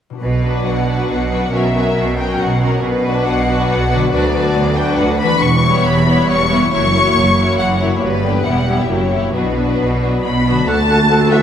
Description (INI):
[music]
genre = classical, dramatic, fast romantic movement for symphony orchestra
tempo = 138 BPM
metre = 3/4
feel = straight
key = B minor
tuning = A4 = 440 Hz
[part]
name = concert harp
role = arpeggios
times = 0.1-11.4 s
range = E2 to C#5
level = -24 LUFS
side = left 5 dB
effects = none
[part]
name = rich symphonic violin section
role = melody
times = 0.2-11.4 s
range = B4 to C#6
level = -20 LUFS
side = left 3 dB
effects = none
[part]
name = bright symphonic cello section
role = bass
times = 0.2-11.4 s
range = D2 to B2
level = -21 LUFS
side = right 2 dB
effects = none
[part]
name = warm studio double bass section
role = bass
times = 0.2-11.4 s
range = E1 to D2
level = -20 LUFS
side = right 2 dB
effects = none
[part]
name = rich symphonic violin section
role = second line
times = 0.4-11.4 s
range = D4 to B5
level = -21 LUFS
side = left 2 dB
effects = none
[part]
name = rich symphonic viola section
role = accompaniment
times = 0.4-11.4 s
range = D3 to F#4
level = -20 LUFS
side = equal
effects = none
[part]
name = mellow French horn section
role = sustained chords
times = 10.2-11.4 s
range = E3 to B3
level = -18 LUFS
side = equal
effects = none
[part]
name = warm clarinet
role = second line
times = 10.7-11.4 s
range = A4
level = -22 LUFS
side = right 1 dB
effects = none
[part]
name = warm oboe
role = second line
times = 10.7-11.4 s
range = F#5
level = -22 LUFS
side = right 2 dB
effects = none
[part]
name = mellow silver concert flute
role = second line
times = 11.1-11.4 s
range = A4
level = -21 LUFS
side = left 2 dB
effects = none
[sound]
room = moderate scoring stage reverb, RT60 1.7 s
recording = none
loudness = -13 LUFS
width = side -9 dB against mid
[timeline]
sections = 0.2-10.7 A section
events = none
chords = 0.2 Bm; 1.5 F#7/B; 2.8 Bm; 4.1 Bm/D; 5.4 C#m7b5/E; 6.7 F#7; 8.0 G; 8.5 Em; 8.9 F#7b9; 9.3 Bm; 10.7 D